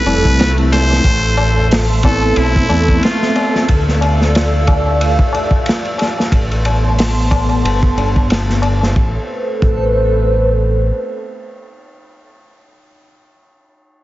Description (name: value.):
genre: trip hop.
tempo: 91 BPM.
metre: 4/4.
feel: swing 56% on 16ths.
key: A minor.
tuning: A4 = 438 Hz.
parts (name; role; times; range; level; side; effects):
trumpet with straight mute; melody; 0.0-3.7 s; E4 to C5; -21 LUFS; equal; vintage 12-bit sampler grit, dub echo.
mellow tonewheel organ; accompaniment; 0.0-3.7 s; G3 to E5; -19 LUFS; equal; fast rotary speaker, tremolo, vintage 12-bit sampler grit, tape echo.
dark analog pad; sustained chords; 0.0-12.4 s; B3 to E6; -20 LUFS; right 1 dB; chorus.
backwards swelling texture; texture; 0.0-9.0 s; A3 to A4; -27 LUFS; equal; built-in reverb.
deep dub fingered electric bass; bass; 0.1-10.9 s; F1 to E2; -15 LUFS; equal; none.
crunchy breakbeat drum kit; drums; 0.1-9.8 s; hi-hat, kick drum, ride cymbal, snare drum; -16 LUFS; equal; none.
tabla; percussion; 0.1-8.9 s; none; -24 LUFS; left 2 dB; none.
room: light reverb.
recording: heavily compressed radio sound, nothing above 7.6 kHz.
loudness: -12 LUFS.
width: side -16 dB against mid.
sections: 0.0-9.0 A section; 9.0-11.6 B section.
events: none.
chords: 0.0 Fmaj7; 1.0 Amadd9; 3.7 Dmadd9; 6.3 Amadd9.